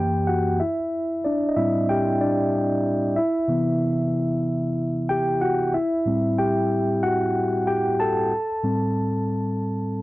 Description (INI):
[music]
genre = soul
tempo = 93 BPM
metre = 4/4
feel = straight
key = A dorian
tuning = A4 = 441 Hz
[part]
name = mellow tine electric piano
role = solo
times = 0.0-10.0 s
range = F#2 to A5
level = -20 LUFS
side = equal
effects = none
[sound]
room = light reverb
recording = dry, close 1970s-style studio recording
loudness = -20 LUFS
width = side -18 dB against mid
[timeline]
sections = 0.6-10.0 A section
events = tine electric piano solo 0.6-10.0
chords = 0.0 F#7b9; 0.6 Am7; 3.2 Cmaj7; 5.7 Am7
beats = | 0.59 1.24 1.88 2.52 | 3.17 3.81 4.45 5.10 | 5.74 6.38 7.03 7.67 | 8.31 8.96 9.60